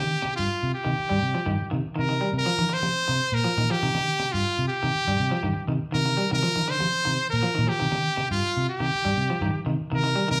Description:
afrobeat; 121 BPM; 4/4; straight; C minor; A4 = 440 Hz
brilliant trumpet; melody; 0.0-10.4 s; F4 to C5; -28 LUFS; equal
electric guitar at the edge of break-up; arpeggios; 0.0-10.4 s; C3 to G3; -32 LUFS; equal
fingered electric bass; bass; 0.0-10.4 s; G2 to F3; -30 LUFS; equal
wet large studio reverb, RT60 0.8 s; band playing live in one room; -25 LUFS; mono
0.0-10.4 A section
0.0 Cm7
0.47 0.97 1.47 | 1.96 2.46 2.95 3.45 | 3.95 4.44 4.94 5.44 | 5.93 6.43 6.93 7.43 | 7.92 8.42 8.92 9.42 | 9.91

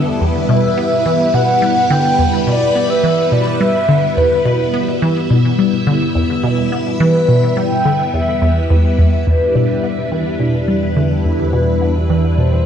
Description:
ambient, sequencer-driven space music; 106 BPM; 4/4; straight; E minor; A4 = 439 Hz
string machine, full ensemble; sustained chords; 0.0-12.7 s; G3 to E5; -18 LUFS; equal; phaser, ensemble chorus
resonant blip pluck; riff; 0.2-12.6 s; E2 to B3; -16 LUFS; equal; phaser, ping-pong delay
mellow horn-like synth lead; melody; 0.5-12.7 s; A4 to G5; -18 LUFS; equal; chorus, ping-pong delay
analog drone; bass; 10.2-12.7 s; E2; -18 LUFS; equal; chorus, tube saturation
pulsing gated texture; texture; 10.2-12.7 s; E5; -39 LUFS; right 1 dB
moderate plate reverb, RT60 2.8 s; -12 LUFS; side -8 dB against mid
0.0-9.3 A section; 9.3-12.7 B section
0.0 Em; 9.3 Em7
| 0.21 0.78 1.34 1.91 | 2.48 3.04 3.61 4.17 | 4.74 5.31 5.87 6.44 | 7.00 7.57 8.14 8.70 | 9.27 9.83 10.40 10.97 | 11.53 12.10

